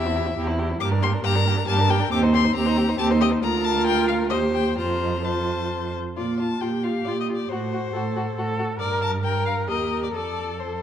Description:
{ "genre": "quick classical-period movement for string quartet", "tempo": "136 BPM", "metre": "3/4", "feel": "straight", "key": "Bb major", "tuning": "A4 = 442 Hz", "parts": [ { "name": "rich violin", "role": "melody", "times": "0.0-10.8 s", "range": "C5 to D6", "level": "-28 LUFS", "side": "left 9 dB", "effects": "none" }, { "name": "warm violin", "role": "second line", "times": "0.0-10.8 s", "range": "E4 to C5", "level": "-28 LUFS", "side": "left 3 dB", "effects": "none" }, { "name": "warm viola", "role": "accompaniment", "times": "0.0-10.8 s", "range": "Bb3 to Bb4", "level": "-28 LUFS", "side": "right 2 dB", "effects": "none" }, { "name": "dark cello", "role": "bass", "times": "0.0-10.8 s", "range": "D2 to Bb2", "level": "-24 LUFS", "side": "right 3 dB", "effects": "none" } ], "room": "moderate recital hall reverb, RT60 1.7 s", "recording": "dark, warm production", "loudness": "-21 LUFS", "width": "side -9 dB against mid", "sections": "0.0-6.2 A section; 6.2-10.8 B section", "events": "none", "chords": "0.0 C/E; 0.8 Gm; 2.1 Cm/Eb; 3.4 Bb/D; 4.3 Cm/Eb; 4.8 F; 6.2 Bb5; 7.5 Am6; 8.8 Gm; 9.7 Eb; 10.1 F" }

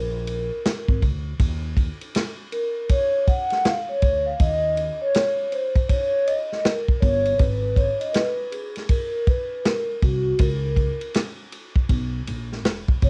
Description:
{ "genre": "hip hop, jazz-hop", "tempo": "80 BPM", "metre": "4/4", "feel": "swing 62% on 16ths", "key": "unclear", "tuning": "A4 = 440 Hz", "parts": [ { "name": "vibraphone with soft mallets", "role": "accompaniment", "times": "0.0-13.1 s", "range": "Gb4 to F#5", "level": "-26 LUFS", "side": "equal", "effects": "cassette tape" }, { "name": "upright bass", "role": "bass", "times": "0.0-13.1 s", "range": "Fb1 to Eb2", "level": "-29 LUFS", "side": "equal", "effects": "tube saturation" }, { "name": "vintage drum kit", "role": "drums", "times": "0.3-13.1 s", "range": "hi-hat, kick drum, ride cymbal, snare drum", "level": "-25 LUFS", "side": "equal", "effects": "cassette tape" } ], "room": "little or no reverb", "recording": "home recording on cassette", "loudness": "-23 LUFS", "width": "mono", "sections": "0.0-1.4 A section; 1.4-13.1 B section", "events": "vibraphone solo 0.0-1.4, 1.4-13.1", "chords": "0.0 Bb; 1.4 Dmaj7#5; 4.4 Eb5; 7.4 Abm9; 10.4 Db5" }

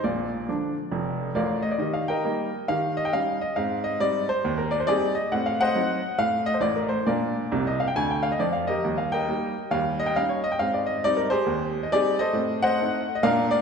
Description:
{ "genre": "jazz, stride piano", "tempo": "136 BPM", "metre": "4/4", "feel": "swing 63% on 8ths", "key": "Eb major", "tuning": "A4 = 440 Hz", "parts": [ { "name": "clear upright piano", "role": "solo", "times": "0.0-13.6 s", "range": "F1 to Ab5", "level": "-22 LUFS", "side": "equal", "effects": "none" } ], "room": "wet scoring stage reverb, RT60 1.8 s", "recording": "recorded in a church or concert hall", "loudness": "-22 LUFS", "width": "side -6 dB against mid", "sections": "0.0-1.8 A section; 1.8-13.6 B section", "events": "upright piano fill 7.5-8.8", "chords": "0.0 Bb; 1.8 Eb; 2.7 Eb7; 3.6 Abmaj7; 5.3 Adim7; 7.1 Bb; 8.8 Eb; 9.7 Eb7; 10.6 Abmaj7; 12.4 Adim7" }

